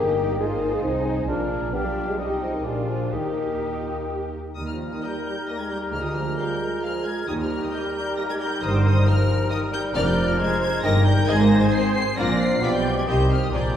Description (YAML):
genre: quick classical-period movement for symphony orchestra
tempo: 133 BPM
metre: 3/4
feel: rubato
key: Eb major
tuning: A4 = 440 Hz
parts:
  - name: warm studio violin section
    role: melody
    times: 0.0-13.8 s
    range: Ab4 to C7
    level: -33 LUFS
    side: left 1 dB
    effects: none
  - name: clear clarinet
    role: second line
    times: 0.0-13.8 s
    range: D4 to Bb4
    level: -32 LUFS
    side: equal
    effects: none
  - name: mellow hollow small flute group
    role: second line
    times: 0.0-13.8 s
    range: F5 to Bb5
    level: -34 LUFS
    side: left 4 dB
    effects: none
  - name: mellow oboe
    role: second line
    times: 0.0-13.8 s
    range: Ab4 to F5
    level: -33 LUFS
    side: left 1 dB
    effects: none
  - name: warm studio violin section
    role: second line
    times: 0.0-13.8 s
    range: Eb4 to F5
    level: -34 LUFS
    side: left 3 dB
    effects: none
  - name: dark bassoon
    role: accompaniment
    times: 0.0-13.8 s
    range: Eb3 to D4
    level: -29 LUFS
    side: equal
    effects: none
  - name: warm studio viola section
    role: accompaniment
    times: 0.0-13.8 s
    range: C4 to D5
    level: -32 LUFS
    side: right 1 dB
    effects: none
  - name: mellow French horn section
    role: sustained chords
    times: 0.0-13.8 s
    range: D3 to Bb4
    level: -30 LUFS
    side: left 2 dB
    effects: none
  - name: warm studio cello section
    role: bass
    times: 0.0-13.8 s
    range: D2 to G4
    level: -26 LUFS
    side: right 1 dB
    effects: none
  - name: warm studio double bass section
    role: bass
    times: 0.0-13.8 s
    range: F1 to Eb2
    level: -27 LUFS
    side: right 1 dB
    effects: none
room: wet scoring stage reverb, RT60 1.8 s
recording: heard from further back in the room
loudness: -20 LUFS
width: side -9 dB against mid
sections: 0.0-4.6 A section; 4.6-13.8 A section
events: none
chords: 0.4 Ab; 1.3 Bb; 1.7 G7/B; 2.2 Cm; 2.6 Bb7; 3.1 Eb; 5.9 Bb7/D; 7.3 Eb; 8.6 Eb/G; 10.0 Bb/F; 10.8 Eb/G; 11.3 Ab; 12.2 Bb; 12.6 G7/B; 13.1 Cm